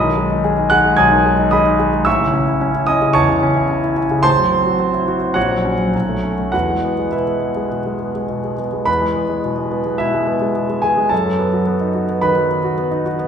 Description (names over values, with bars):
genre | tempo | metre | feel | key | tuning
classical, virtuoso piano study | 99-111 BPM | 4/4 | rubato | E major | A4 = 440 Hz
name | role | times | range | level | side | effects
warm concert grand piano | solo | 0.0-13.3 s | A1 to G#6 | -14 LUFS | equal | none
room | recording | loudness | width
wet recital hall reverb, RT60 1.4 s | recorded in a church or concert hall | -14 LUFS | side -7 dB against mid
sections
0.0-8.9 A section; 8.9-13.3 A section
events
none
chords
0.0 G#m/B; 2.1 A; 4.2 F#m7b5/A; 5.4 F#/A#; 5.9 Bsus2; 6.5 E; 11.1 B7/F#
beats
0.44 0.98 1.52 | 2.06 2.61 3.15 3.70 | 4.25 4.80 5.36 5.94 | 6.54 7.13 7.72 8.30 | 8.88 9.44 10.00 10.55 | 11.11 11.67 12.22 12.78